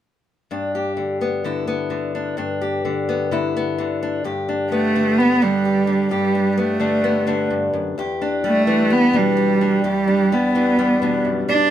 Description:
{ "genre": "folk", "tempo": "128 BPM", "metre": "4/4", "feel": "straight", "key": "unclear", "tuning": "A4 = 440 Hz", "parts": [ { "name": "fingerpicked acoustic archtop guitar", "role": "accompaniment", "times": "0.5-11.7 s", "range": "E2 to G4", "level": "-21 LUFS", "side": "left 3 dB", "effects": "none" }, { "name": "warm cello", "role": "melody", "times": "4.7-11.7 s", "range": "G3 to D4", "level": "-17 LUFS", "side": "right 2 dB", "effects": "none" } ], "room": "moderate studio reverb, RT60 0.6 s", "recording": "band playing live in one room", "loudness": "-17 LUFS", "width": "side -10 dB against mid", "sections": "0.5-4.2 A section; 4.2-11.7 B section", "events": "none", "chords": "0.5 G; 4.2 Gadd9; 8.0 Em7" }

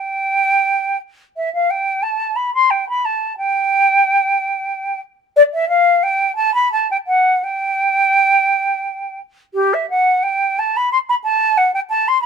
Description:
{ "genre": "classical, baroque-style fantasia for unaccompanied flute", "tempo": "82-92 BPM", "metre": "3/4", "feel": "rubato", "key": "unclear", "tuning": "A4 = 438 Hz", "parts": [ { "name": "concert flute", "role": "solo", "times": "0.0-12.3 s", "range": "G4 to C6", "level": "-14 LUFS", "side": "equal", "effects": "none" } ], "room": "light reverb", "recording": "close, detailed microphones", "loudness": "-14 LUFS", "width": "side -6 dB against mid", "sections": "0.0-1.4 A section; 1.4-12.3 A section", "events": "none", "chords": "none" }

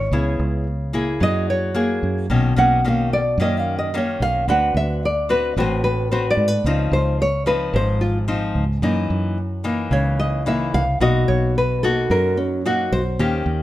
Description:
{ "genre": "bossa nova", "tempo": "110 BPM", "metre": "4/4", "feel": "straight", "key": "unclear", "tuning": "A4 = 442 Hz", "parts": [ { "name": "nylon-string guitar", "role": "melody", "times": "0.0-13.4 s", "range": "Db4 to F#5", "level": "-21 LUFS", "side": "equal", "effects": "none" }, { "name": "nylon-string guitar", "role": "accompaniment", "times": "0.0-13.6 s", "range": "F#2 to B4", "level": "-22 LUFS", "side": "left 2 dB", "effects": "none" }, { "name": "fingered electric bass", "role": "bass", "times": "0.0-13.6 s", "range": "Ab1 to Ab2", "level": "-23 LUFS", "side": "right 1 dB", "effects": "none" } ], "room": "light reverb", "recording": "none", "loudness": "-17 LUFS", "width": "side -14 dB against mid", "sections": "0.0-13.6 A section", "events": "nylon-string guitar solo 0.0-13.6", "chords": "0.1 Dbm7; 1.2 Gb9; 2.3 Bmaj9; 4.5 D6; 6.7 Dbmaj9; 8.8 Gb6; 11.0 Bmaj7" }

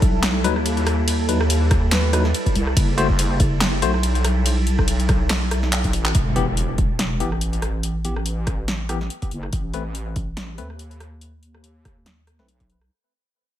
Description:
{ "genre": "deep dubstep", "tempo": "142 BPM", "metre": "4/4", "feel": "swing 56% on 16ths, half-time", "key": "unclear", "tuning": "A4 = 441 Hz", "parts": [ { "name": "bowed-like drone", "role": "sustained chords", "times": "0.0-6.2 s", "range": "G3 to E4", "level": "-30 LUFS", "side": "left 2 dB", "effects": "built-in reverb, phaser" }, { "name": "wobble bass", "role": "bass", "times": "0.0-12.9 s", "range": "E1 to D#2", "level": "-22 LUFS", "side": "equal", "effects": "chorus" }, { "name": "deep house drum kit", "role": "drums", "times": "0.0-12.9 s", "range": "handclaps, hi-hat, ride cymbal, rim click, snare drum", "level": "-25 LUFS", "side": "equal", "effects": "overdrive" }, { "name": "electronic kick drum", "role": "drums", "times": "0.0-12.7 s", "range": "none", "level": "-21 LUFS", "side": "equal", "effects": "overdrive" }, { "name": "wind-like tuned noise texture", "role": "texture", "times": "0.0-6.2 s", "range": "A4", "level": "-33 LUFS", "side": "right 6 dB", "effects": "built-in reverb" }, { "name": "barky tine electric piano", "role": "stabs", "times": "0.4-12.5 s", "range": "E3 to C5", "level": "-27 LUFS", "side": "left 5 dB", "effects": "fast stereo tremolo, low-pass filter, dub echo" }, { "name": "bright reedy long shakuhachi", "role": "melody", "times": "1.9-2.1 s", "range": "B4", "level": "-33 LUFS", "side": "equal", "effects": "none" }, { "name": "impact", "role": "sound effects", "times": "6.1-7.8 s", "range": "none", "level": "-29 LUFS", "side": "equal", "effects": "none" } ], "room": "digital ambience", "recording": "none", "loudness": "-18 LUFS", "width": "side -11 dB against mid", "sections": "0.0-6.1 A section; 6.1-12.9 B section", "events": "drop 0.0-6.1; drum fill 5.7-6.1; fade-out 6.1-12.9; impact 6.1-7.8", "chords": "0.0 B; 2.8 F#m; 6.1 N.C.; 9.5 Asus2" }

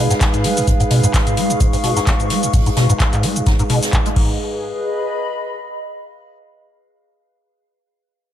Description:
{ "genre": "acid house", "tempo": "129 BPM", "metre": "4/4", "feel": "swing 55% on 16ths", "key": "G# dorian", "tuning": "A4 = 441 Hz", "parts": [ { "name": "dark analog pad", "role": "sustained chords", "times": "0.0-4.4 s", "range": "G#3 to E#5", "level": "-25 LUFS", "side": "right 2 dB", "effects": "wide subtle chorus, sidechain pumping" }, { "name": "liquid acid bass", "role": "riff", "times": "0.0-4.4 s", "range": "G#2 to G#3", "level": "-19 LUFS", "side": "equal", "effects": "phaser, tube saturation, ensemble chorus, sidechain pumping" }, { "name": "warbly tape-like pad", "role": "texture", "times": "0.0-6.2 s", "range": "G#4 to C#6", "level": "-23 LUFS", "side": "left 1 dB", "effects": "chorus, built-in reverb, sidechain pumping" }, { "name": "booming analog drum machine", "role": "drums", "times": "0.1-4.3 s", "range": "crash cymbal, handclaps, hi-hat, shaker", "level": "-23 LUFS", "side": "left 2 dB", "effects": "none" }, { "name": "jazz brush drum kit", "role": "drums", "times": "0.1-4.2 s", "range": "hi-hat, snare drum", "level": "-29 LUFS", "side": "right 2 dB", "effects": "sidechain pumping on hats, high-pass filter on hats, high-pass filter on snare, high-pass filter on room" }, { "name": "electronic kick drum", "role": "drums", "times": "0.2-4.3 s", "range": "none", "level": "-17 LUFS", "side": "equal", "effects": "none" } ], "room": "light reverb, digital ambience", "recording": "lossy compression artefacts", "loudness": "-14 LUFS", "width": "side -11 dB against mid", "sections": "0.0-4.4 A section; 4.4-6.3 B section", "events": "filter sweep on acid bass 0.0-4.4", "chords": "0.0 G#m" }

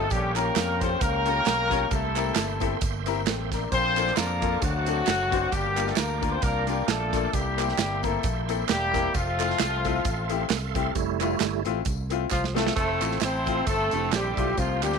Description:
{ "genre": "uptempo gospel", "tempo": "133 BPM", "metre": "4/4", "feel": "swing 56% on 8ths", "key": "F major", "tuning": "A4 = 441 Hz", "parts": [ { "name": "warm horn section", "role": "melody", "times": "0.0-15.0 s", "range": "F3 to C5", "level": "-27 LUFS", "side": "left 2 dB", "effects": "none" }, { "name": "bright baby grand piano", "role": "accompaniment", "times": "0.0-15.0 s", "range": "G2 to Db5", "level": "-31 LUFS", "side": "left 14 dB", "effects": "none" }, { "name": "bright tonewheel organ", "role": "sustained chords", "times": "0.0-15.0 s", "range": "G3 to Eb6", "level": "-34 LUFS", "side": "right 14 dB", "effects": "slow rotary speaker, overdrive, chorus vibrato" }, { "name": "fingered electric bass", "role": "bass", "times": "0.0-15.0 s", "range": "E1 to F2", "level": "-31 LUFS", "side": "right 1 dB", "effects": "none" }, { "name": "modern studio drum kit", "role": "drums", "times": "0.1-15.0 s", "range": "hi-hat, kick drum, snare drum", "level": "-29 LUFS", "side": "right 4 dB", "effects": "none" }, { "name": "tambourine and handclaps", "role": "percussion", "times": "0.1-14.9 s", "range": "none", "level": "-37 LUFS", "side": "right 5 dB", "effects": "none" }, { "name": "warm tenor saxophone", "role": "melody", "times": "12.3-15.0 s", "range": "F3 to C4", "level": "-31 LUFS", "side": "right 4 dB", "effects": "none" }, { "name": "mellow electric guitar", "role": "second line", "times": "13.9-14.8 s", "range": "F3 to F4", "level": "-38 LUFS", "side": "right 13 dB", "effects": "analog chorus" } ], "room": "light reverb, small room ambience", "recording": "1960s-style stereo with parts hard left and right", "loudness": "-23 LUFS", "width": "side -5 dB against mid", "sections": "0.0-11.0 A section; 11.0-12.8 B section; 12.8-15.0 C section", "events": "tonewheel organ solo 11.0-12.8; drum fill 12.3-12.8", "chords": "0.1 Bbm6; 1.9 C7; 3.7 Bbmaj7; 4.6 D7; 5.5 Gm7; 7.3 C7; 9.1 Fmaj7" }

